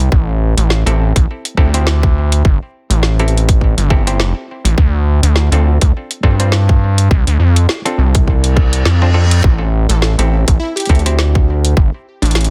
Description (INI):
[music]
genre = glitch hop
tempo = 103 BPM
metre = 4/4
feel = swing 57% on 16ths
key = A minor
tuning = A4 = 440 Hz
[part]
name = muted clav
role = stabs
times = 0.0-12.5 s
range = C4 to C5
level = -25 LUFS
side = equal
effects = overdrive, sidechain pumping, delay
[part]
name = gritty driven synth bass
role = bass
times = 0.0-12.5 s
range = G1 to G2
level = -14 LUFS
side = equal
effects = tube saturation
[part]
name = electronic kick drum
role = drums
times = 0.1-11.9 s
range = none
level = -14 LUFS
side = equal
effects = none
[part]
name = drum and bass drum kit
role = drums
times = 0.6-12.5 s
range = hi-hat, rim click, snare drum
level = -21 LUFS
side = equal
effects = none
[part]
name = reverse cymbal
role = sound effects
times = 8.5-9.4 s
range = none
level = -26 LUFS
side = equal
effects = none
[part]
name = plucky unison lead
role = melody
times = 9.9-12.3 s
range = D4 to A4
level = -26 LUFS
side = equal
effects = phaser, delay
[sound]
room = digital ambience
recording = dense, heavily limited modern master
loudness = -13 LUFS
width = mono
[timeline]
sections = 0.0-12.5 A section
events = reverse cymbal 8.5-9.4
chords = 0.1 Am7; 4.8 Dm7; 9.4 Am7